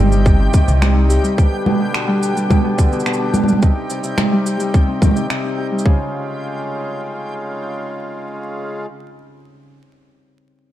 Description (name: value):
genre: folktronica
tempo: 107 BPM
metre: 4/4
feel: straight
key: Db lydian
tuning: A4 = 444 Hz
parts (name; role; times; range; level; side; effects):
- hand-pumped harmonium; sustained chords; 0.0-8.9 s; C3 to F4; -25 LUFS; left 1 dB; none
- Celtic harp; arpeggios; 0.0-9.8 s; B2 to G4; -22 LUFS; left 1 dB; low-pass filter, digital delay
- upright bass; bass; 0.0-1.2 s; G1 to C2; -14 LUFS; equal; none
- backwards swelling texture; texture; 0.0-5.9 s; G4 to G5; -29 LUFS; equal; built-in reverb
- electronic shaker, finger snaps and congas; drums; 0.1-5.9 s; none; -19 LUFS; right 1 dB; none
- electronic kick drum; drums; 0.3-6.0 s; none; -13 LUFS; equal; none
room: light reverb, studio reverb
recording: vinyl crackle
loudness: -15 LUFS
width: side -13 dB against mid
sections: 0.0-5.9 A section; 5.9-8.1 B section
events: none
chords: 0.0 Cm; 1.4 G/B; 3.6 Cm; 5.9 Db